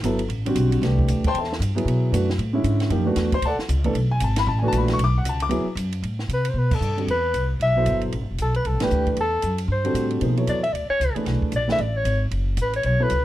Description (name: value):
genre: modal jazz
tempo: 230 BPM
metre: 4/4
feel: swing 60% on 8ths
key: A dorian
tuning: A4 = 440 Hz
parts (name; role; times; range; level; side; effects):
- dark baby grand piano; accompaniment; 0.0-13.1 s; B2 to D6; -24 LUFS; equal; none
- upright bass; bass; 0.0-13.2 s; E1 to C3; -23 LUFS; equal; none
- compact cocktail drum kit; drums; 0.0-13.2 s; crash cymbal, hi-hat, kick drum, ride cymbal, snare drum; -32 LUFS; right 2 dB; none
- breathy soprano saxophone; melody; 6.3-13.2 s; G4 to E5; -24 LUFS; left 1 dB; none
room: little or no reverb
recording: dark, warm production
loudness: -20 LUFS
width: side -14 dB against mid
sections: 0.0-6.0 A section; 6.0-13.2 B section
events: band accent 6.7, 8.8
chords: 0.0 Am9; 1.9 Bm9; 6.0 Am9; 10.2 Bm9